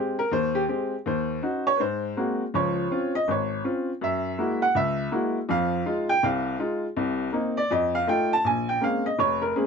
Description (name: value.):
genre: solo jazz.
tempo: 162 BPM.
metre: 4/4.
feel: swing 63% on 8ths.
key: F minor.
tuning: A4 = 439 Hz.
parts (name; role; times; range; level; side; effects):
clear upright piano; solo; 0.0-9.7 s; F1 to A5; -23 LUFS; equal; none.
room: light reverb.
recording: nothing above 7.7 kHz.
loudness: -23 LUFS.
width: side -5 dB against mid.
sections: 0.0-8.4 A section; 8.4-9.7 A section.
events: upright piano solo 0.0-9.7.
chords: 0.0 Abmaj7; 1.1 Ebm7; 1.8 Ab9; 2.5 Dbmaj7; 4.0 Gb9; 5.5 Fm7; 7.0 Cm9; 7.7 F7; 8.4 Bbm9.